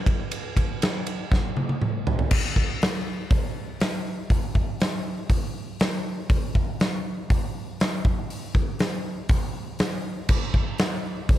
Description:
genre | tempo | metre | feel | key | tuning
rock | 120 BPM | 4/4 | straight | none | none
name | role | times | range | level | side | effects
big rock drum kit | drums | 0.1-11.4 s | crash cymbal, hi-hat, kick drum, ride cymbal, snare drum, toms | -23 LUFS | equal | none
room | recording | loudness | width
little or no reverb | none | -23 LUFS | side -13 dB against mid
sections
0.0-2.3 A section; 2.3-11.4 B section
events
drum fill 1.3-2.3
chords
none

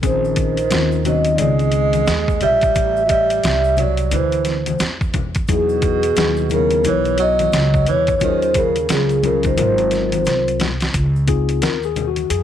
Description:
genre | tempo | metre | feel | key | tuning
hip hop, jazz-hop | 88 BPM | 4/4 | swing 62% on 16ths | unclear | A4 = 440 Hz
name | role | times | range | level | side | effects
breathy tenor saxophone | second line | 0.0-10.6 s | B2 to Ab3 | -23 LUFS | right 13 dB | none
mellow tine electric piano | accompaniment | 0.0-12.4 s | Eb3 to Bb4 | -23 LUFS | left 14 dB | medium stereo tremolo
upright bass | bass | 0.0-12.4 s | Ab1 to F2 | -21 LUFS | equal | none
boom bap sampler-style drum kit | drums | 0.0-12.4 s | hi-hat, kick drum, snare drum | -22 LUFS | equal | none
tube shaker and congas | percussion | 0.0-12.4 s | none | -29 LUFS | left 9 dB | none
vibraphone with soft mallets | melody | 0.1-10.6 s | G#4 to Fb5 | -18 LUFS | equal | none
room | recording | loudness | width
studio ambience | 1960s-style stereo with parts hard left and right | -15 LUFS | side -10 dB against mid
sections
0.0-10.9 A section; 10.9-12.4 B section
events
drum fill 10.3-10.9; tine electric piano solo 10.9-12.4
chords
0.0 Bbm11; 2.8 Am7; 4.1 Dsus2; 5.5 Emaj9; 8.2 Ebm11; 9.6 Ab13; 10.9 Dbmaj9

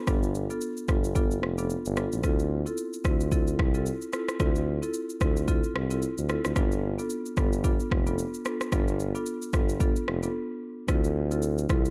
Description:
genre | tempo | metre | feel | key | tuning
afrobeats | 111 BPM | 4/4 | swing 58% on 16ths | D dorian | A4 = 440 Hz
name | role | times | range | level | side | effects
marimba with medium mallets | accompaniment | 0.0-11.9 s | B3 to A4 | -34 LUFS | equal | none
warm tuba | bass | 0.1-11.9 s | F1 to D2 | -32 LUFS | equal | none
afro-pop drum kit | drums | 0.1-11.9 s | kick drum, rim click, shaker | -30 LUFS | equal | none
room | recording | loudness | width
small room ambience | dark, warm production | -28 LUFS | mono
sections
0.0-10.9 A section; 10.9-11.9 B section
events
break 10.3-10.9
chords
0.0 G7; 2.2 Dm7; 6.6 G7; 10.9 Dm7

